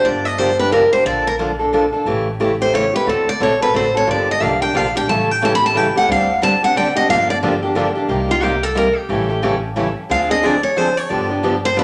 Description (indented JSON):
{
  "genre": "acoustic string swing (jazz manouche)",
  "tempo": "179 BPM",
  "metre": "3/4",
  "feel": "swing 61% on 8ths",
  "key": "G minor",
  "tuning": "A4 = 438 Hz",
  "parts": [
    { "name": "picked steel-string acoustic guitar", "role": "melody", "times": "0.0-11.8 s", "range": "F4 to B5", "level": "-19 LUFS", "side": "equal", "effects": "none" },
    { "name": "picked steel-string acoustic guitar", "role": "accompaniment", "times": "0.0-11.8 s", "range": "C3 to A4", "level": "-21 LUFS", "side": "equal", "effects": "none" },
    { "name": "upright bass", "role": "bass", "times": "0.0-11.8 s", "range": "G1 to D2", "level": "-30 LUFS", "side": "equal", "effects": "none" },
    { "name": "picked steel-string acoustic guitar", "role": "accompaniment", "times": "4.1-11.8 s", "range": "C3 to A4", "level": "-27 LUFS", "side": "equal", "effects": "none" }
  ],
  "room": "wet large studio reverb, RT60 0.9 s",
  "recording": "none",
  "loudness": "-17 LUFS",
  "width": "mono",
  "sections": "0.0-8.1 A section; 8.1-11.8 A section",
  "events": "steel-string acoustic guitar solo 0.0-8.1, 8.1-11.8",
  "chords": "0.0 Gm7; 1.1 Bbmaj7; 2.1 A7; 3.1 D7; 4.1 Gm7; 5.1 A7; 6.1 D7sus4; 7.1 Gm7; 8.1 Cm7; 9.1 A7; 10.1 Dm7b5; 11.1 G7"
}